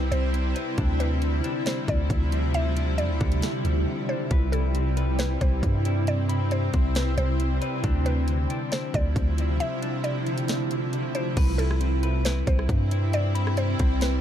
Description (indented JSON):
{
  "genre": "hip hop, atmospheric cloud-rap",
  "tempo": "136 BPM",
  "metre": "4/4",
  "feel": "half-time",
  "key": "unclear",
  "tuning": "A4 = 440 Hz",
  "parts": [
    { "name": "mallet-like synth pluck", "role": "melody", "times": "0.0-14.2 s", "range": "A4 to E5", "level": "-34 LUFS", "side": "equal", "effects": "chorus, ping-pong delay" },
    { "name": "shimmering ambient pad", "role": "sustained chords", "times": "0.0-14.2 s", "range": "C3 to E4", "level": "-28 LUFS", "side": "equal", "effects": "chorus, built-in reverb, sidechain pumping" },
    { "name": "clean electric guitar", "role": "arpeggios", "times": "0.0-14.2 s", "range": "D3 to B5", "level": "-36 LUFS", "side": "left 7 dB", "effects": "ping-pong delay" },
    { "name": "long sustained 808-style bass", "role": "bass", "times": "0.0-14.2 s", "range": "C2 to G2", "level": "-24 LUFS", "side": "equal", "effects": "none" },
    { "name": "trap drum kit", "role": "drums", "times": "0.1-14.1 s", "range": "crash cymbal, hi-hat, kick drum, rim click, snare drum", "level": "-27 LUFS", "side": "equal", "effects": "none" }
  ],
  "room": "little or no reverb",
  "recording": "dark, warm production",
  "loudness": "-22 LUFS",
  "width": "side -10 dB against mid",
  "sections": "0.0-11.4 A section; 11.4-14.2 B section",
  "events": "break 3.9-4.3, 9.6-11.4",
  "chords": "0.0 Cmaj7; 0.8 Dm11; 4.3 Cmaj7; 7.8 Dm11; 11.4 Cmaj7"
}